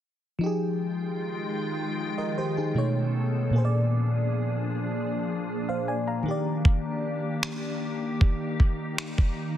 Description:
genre	contemporary R&B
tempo	77 BPM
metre	4/4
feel	straight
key	unclear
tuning	A4 = 439 Hz
part	mellow FM electric piano	accompaniment	0.4-9.6 s	Bb2 to Bb5	-28 LUFS	equal	chorus, phaser
part	glassy FM pad	sustained chords	0.7-9.6 s	Eb3 to G5	-32 LUFS	left 2 dB	ensemble chorus, built-in reverb
part	dusty soul sampler-style drum kit	drums	6.7-9.4 s	finger snaps, kick drum	-22 LUFS	equal	overdrive, soft clipping on snare
room	light reverb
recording	dense, heavily limited modern master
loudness	-25 LUFS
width	side -11 dB against mid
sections	0.4-9.6 A section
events	none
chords	0.4 Fm9; 2.8 B9; 3.5 Bb7; 6.3 Ebmaj7

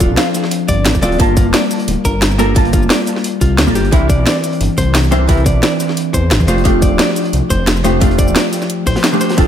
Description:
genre	liquid drum and bass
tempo	176 BPM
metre	4/4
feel	swing 54% on 16ths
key	G dorian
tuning	A4 = 440 Hz
part	hollow-body jazz guitar	accompaniment	0.0-9.5 s	E3 to A5	-16 LUFS	equal	wide subtle chorus, tape echo
part	clean electric guitar	arpeggios	0.0-9.5 s	E4 to F5	-21 LUFS	left 1 dB	analog delay
part	dark detuned saw bass	bass	0.0-9.5 s	D1 to E2	-16 LUFS	equal	none
part	crunchy breakbeat drum kit	drums	0.0-9.5 s	hi-hat, snare drum	-25 LUFS	equal	none
part	electronic kick drum	drums	0.0-9.5 s	none	-14 LUFS	equal	none
part	garage drum kit	drums	0.0-9.5 s	cabasa, hi-hat, snare drum	-17 LUFS	equal	none
room	light reverb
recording	none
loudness	-11 LUFS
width	side -9 dB against mid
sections	0.0-9.5 A section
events	none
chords	0.0 Dm7; 1.2 Gm9; 3.9 C9; 6.5 Dm7

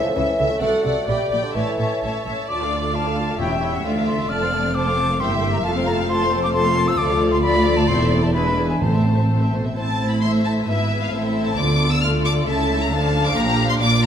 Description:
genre	quick classical-period movement for symphony orchestra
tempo	133 BPM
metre	2/4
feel	straight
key	D minor, A minor from 6.1 s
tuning	A4 = 440 Hz
part	rich studio violin section	melody	0.0-14.1 s	C5 to F6	-27 LUFS	left 3 dB	none
part	warm studio violin section	second line	0.0-14.1 s	F4 to F5	-26 LUFS	left 3 dB	none
part	warm bassoon	accompaniment	0.0-2.0 s	D3 to A3	-23 LUFS	right 1 dB	none
part	warm studio viola section	accompaniment	0.0-14.1 s	F3 to E5	-27 LUFS	equal	none
part	mellow French horn section	sustained chords	0.0-9.5 s	G#3 to D5	-26 LUFS	left 4 dB	none
part	dark studio cello section	bass	0.0-14.1 s	D2 to D3	-24 LUFS	right 2 dB	none
part	dark studio double bass section	bass	0.2-14.1 s	E1 to D2	-26 LUFS	right 3 dB	none
part	bright concert flute	second line	2.5-9.5 s	F5 to F6	-23 LUFS	left 1 dB	none
part	timpani	percussion	3.4-3.8, 7.9-9.5 s	E2 to A2	-26 LUFS	equal	none
room	wet recital hall reverb, RT60 1.8 s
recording	none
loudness	-17 LUFS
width	side -8 dB against mid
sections	0.0-2.5 A section; 2.5-9.8 B section; 9.8-14.1 A section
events	none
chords	0.0 A/C#; 0.6 D7/C; 1.1 Gm/Bb; 1.5 A; 2.5 Dm; 3.4 C#dim/E; 3.9 Dm; 4.3 F; 5.2 Edim/G; 5.6 F; 7.0 Dm; 7.9 Am/E; 8.3 E7; 8.8 Am; 10.7 E/G#; 11.1 Am; 11.6 Dm; 12.5 A/C#; 12.9 Dm; 13.4 Bb

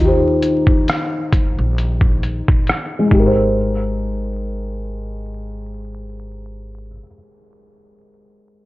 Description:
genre	lo-fi hip hop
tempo	67 BPM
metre	4/4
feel	swing 55% on 16ths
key	Ab major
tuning	A4 = 440 Hz
part	felt-muted upright piano	accompaniment	0.0-8.7 s	Eb3 to C5	-19 LUFS	left 1 dB	none
part	upright bass	bass	0.0-7.0 s	Ab1 to Eb2	-23 LUFS	equal	none
part	trip hop sampler-style drum kit	drums	0.4-3.3 s	hi-hat, kick drum, rim click	-16 LUFS	equal	none
room	light reverb, studio ambience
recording	vinyl crackle, low-pass filter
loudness	-15 LUFS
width	side -19 dB against mid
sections	0.0-3.6 A section; 3.6-7.1 B section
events	filter sweep 0.0-3.6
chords	0.0 Eb7; 3.1 Abmaj7

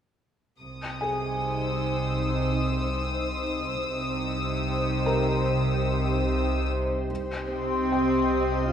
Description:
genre	cinematic, suspense film score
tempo	74 BPM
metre	4/4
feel	straight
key	C minor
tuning	A4 = 438 Hz
part	glassy FM pad	sustained chords	1.2-8.7 s	Eb4 to Eb5	-30 LUFS	left 1 dB	ensemble chorus, built-in reverb
part	rich studio double bass section	bass	0.6-7.9 s	C2	-33 LUFS	right 2 dB	none
part	warm studio cello section	bass	0.6-8.7 s	C3	-31 LUFS	right 3 dB	none
part	deep rumbling drone	drone	1.6-8.7 s	C2	-33 LUFS	left 1 dB	built-in reverb, phaser
part	warm studio violin section	texture	0.6-6.7 s	Eb6 to E6	-33 LUFS	left 3 dB	none
part	felt-muted upright piano	texture	1.0-8.7 s	Ab4 to Bb5	-34 LUFS	left 2 dB	none
part	warm studio viola section	accompaniment	7.5-8.7 s	C4	-24 LUFS	left 1 dB	none
room	moderate scoring stage reverb, RT60 1.5 s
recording	none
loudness	-24 LUFS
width	side -8 dB against mid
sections	0.6-7.1 A section; 7.1-8.7 B section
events	none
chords	0.6 Cm

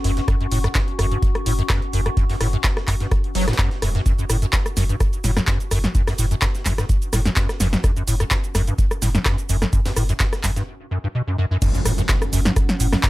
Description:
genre	acid house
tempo	127 BPM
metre	4/4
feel	swing 53% on 16ths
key	unclear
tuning	A4 = 440 Hz
part	acid bass, square	riff	0.0-13.1 s	F#2 to F#3	-23 LUFS	equal	tube saturation, ensemble chorus, sidechain pumping
part	saturated sub bass	bass	0.0-13.0 s	E1 to F#1	-24 LUFS	equal	sidechain pumping
part	breakbeat sampler-style drum kit	drums	0.0-13.1 s	hi-hat, snare drum	-35 LUFS	equal	overdrive, high-pass filter on snare, sidechain pumping on hats, high-pass filter on hats, high-pass filter on room
part	punchy analog drum machine	drums	0.0-13.1 s	cabasa, crash cymbal, handclaps, hi-hat, rim click, snare drum	-24 LUFS	equal	overdrive
part	warbly tape-like pad	texture	0.0-13.1 s	C#4 to C#6	-33 LUFS	left 1 dB	chorus, built-in reverb, sidechain pumping
part	electronic kick drum	drums	0.3-13.1 s	none	-20 LUFS	equal	none
part	impact	sound effects	11.6-13.1 s	none	-28 LUFS	equal	none
room	little or no reverb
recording	none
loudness	-18 LUFS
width	side -18 dB against mid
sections	0.0-11.6 A section; 11.6-13.1 B section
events	break 10.7-11.6; drop 11.6-13.1; impact 11.6-13.1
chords	0.0 F#5

